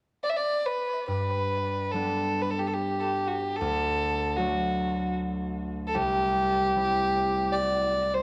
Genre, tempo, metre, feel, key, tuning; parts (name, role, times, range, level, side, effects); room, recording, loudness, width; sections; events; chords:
celtic folk, Celtic slow air; 70-77 BPM; 3/4; rubato; G major; A4 = 440 Hz
dark fiddle; melody; 0.2-8.2 s; F#4 to E5; -29 LUFS; equal; analog delay
concert harp; accompaniment; 1.1-8.2 s; C2 to E4; -33 LUFS; equal
moderate spring reverb, RT60 1.5 s; worn, warbling old tape, cassette tape, warbly pitch drift; -28 LUFS; mono
0.0-1.1 A section; 1.1-8.2 B section
0.0 N.C.; 1.1 G; 3.6 D; 5.9 C